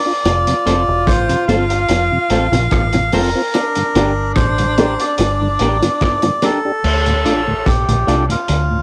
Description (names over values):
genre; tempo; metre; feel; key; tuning
roots reggae; 73 BPM; 4/4; straight; D minor; A4 = 440 Hz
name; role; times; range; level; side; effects
melodica; melody; 0.0-8.8 s; F4 to F5; -21 LUFS; equal; cassette tape
mellow tonewheel organ; accompaniment; 0.1-8.8 s; D2 to G4; -23 LUFS; equal; chorus vibrato, slow rotary speaker
breathy tenor saxophone; second line; 0.3-6.4 s; D4 to F4; -25 LUFS; equal; none
deep dub fingered electric bass; bass; 0.3-8.8 s; E1 to D2; -21 LUFS; equal; none
cloth-damped thuddy drum kit; drums; 0.3-8.7 s; crash cymbal, hi-hat, kick drum, rim click; -24 LUFS; equal; cassette tape
bongos; percussion; 0.3-6.6 s; none; -20 LUFS; equal; none
electric guitar at the edge of break-up; accompaniment; 0.7-8.3 s; C4 to D5; -26 LUFS; equal; harmonic tremolo
room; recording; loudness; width
little or no reverb; home recording on cassette; -16 LUFS; mono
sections
0.0-6.8 A section; 6.8-8.8 B section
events
none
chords
0.2 F; 3.5 Gm; 6.8 Dm